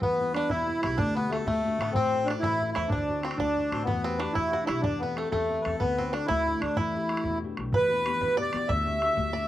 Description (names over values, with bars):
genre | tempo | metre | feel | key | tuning
celtic folk, Celtic jig | 125 BPM (dotted quarters) | 6/8 | straight | E minor | A4 = 440 Hz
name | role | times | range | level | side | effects
accordion | melody | 0.0-9.5 s | A3 to E5 | -27 LUFS | equal | none
bluegrass banjo | second line | 0.0-9.5 s | A3 to E5 | -37 LUFS | right 5 dB | slapback echo
mellow harmonica | second line | 0.0-9.5 s | C4 to E5 | -37 LUFS | left 3 dB | slapback echo
Celtic harp | accompaniment | 0.0-9.5 s | B2 to C5 | -35 LUFS | left 5 dB | slapback echo
upright bass | bass | 0.0-9.4 s | A1 to E2 | -35 LUFS | equal | none
bodhran | percussion | 0.0-9.4 s | none | -34 LUFS | right 1 dB | none
room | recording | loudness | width
little or no reverb | recorded outdoors, with no room sound | -25 LUFS | side -13 dB against mid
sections
0.0-7.7 A section; 7.7-9.5 A section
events
none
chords
0.0 Em; 1.0 D; 2.0 Am; 2.9 Dadd9; 3.9 Em7; 4.8 Am/E; 5.8 D; 6.8 Em7; 7.7 Em; 8.7 D